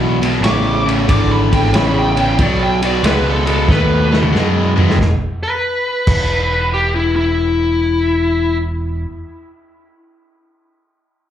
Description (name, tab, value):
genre	blues rock power trio and southern rock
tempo	92 BPM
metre	4/4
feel	swing 67% on 8ths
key	E mixolydian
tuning	A4 = 440 Hz
part	raw garage guitar	riff	0.0-5.0 s	E2 to A3	-16 LUFS	equal	overdrive, slapback echo
part	growling picked electric bass	bass	0.0-9.0 s	E1 to F#2	-18 LUFS	equal	overdrive
part	vintage drum kit	drums	0.2-6.2 s	crash cymbal, kick drum, ride cymbal, snare drum, toms	-19 LUFS	equal	none
part	smooth overdriven lead guitar	melody	0.4-8.6 s	E4 to D6	-18 LUFS	left 2 dB	plate reverb, slapback echo
room	light reverb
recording	live gig heard through the venue's PA, club reverb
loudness	-13 LUFS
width	side -10 dB against mid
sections	0.0-5.0 A section; 5.0-7.6 B section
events	lead electric guitar solo 0.0-5.0; drum fill 3.7-5.0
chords	0.0 E7; 2.4 B7; 5.0 E5